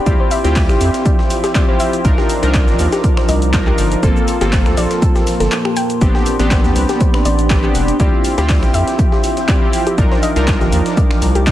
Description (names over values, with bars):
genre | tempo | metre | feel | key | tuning
deep house | 121 BPM | 4/4 | swing 54% on 16ths | unclear | A4 = 441 Hz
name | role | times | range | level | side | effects
warbly tape-like pad | sustained chords | 0.0-11.5 s | D5 to D6 | -26 LUFS | equal | chorus, built-in reverb, sidechain pumping
soft round pluck | arpeggios | 0.0-11.5 s | G4 to G5 | -24 LUFS | left 2 dB | chorus, cassette tape, sidechain pumping, tape echo
warm analog keys | stabs | 0.0-11.5 s | Bb3 to Bb4 | -19 LUFS | equal | chorus, sidechain pumping, tape echo
deep dark ambient pad | texture | 0.0-11.5 s | F3 to E6 | -23 LUFS | equal | chorus, built-in reverb, sidechain pumping
round analog bass | bass | 0.1-11.5 s | E1 to F2 | -17 LUFS | equal | tube saturation, sidechain pumping
breakbeat sampler-style drum kit | drums | 0.1-11.5 s | hi-hat, snare drum, tambourine | -31 LUFS | equal | none
electronic kick drum | drums | 0.1-11.5 s | none | -15 LUFS | equal | overdrive, vintage 12-bit sampler grit
punchy analog drum machine | drums | 0.1-11.5 s | cabasa, finger snaps, handclaps, hi-hat | -24 LUFS | equal | overdrive, vintage 12-bit sampler grit
room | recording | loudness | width
little or no reverb | dense, heavily limited modern master | -12 LUFS | side -13 dB against mid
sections
0.0-11.5 A section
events
break 5.5-6.0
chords
0.1 Dm11; 2.0 Cm11; 4.0 Gm11; 6.0 Am11; 8.0 Dm11; 10.0 Cm11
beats
| 0.06 0.56 1.05 1.55 | 2.05 2.54 3.04 3.54 | 4.03 4.53 5.02 5.52 | 6.01 6.51 7.01 7.50 | 8.00 8.49 8.99 9.48 | 9.98 10.48 10.97 11.47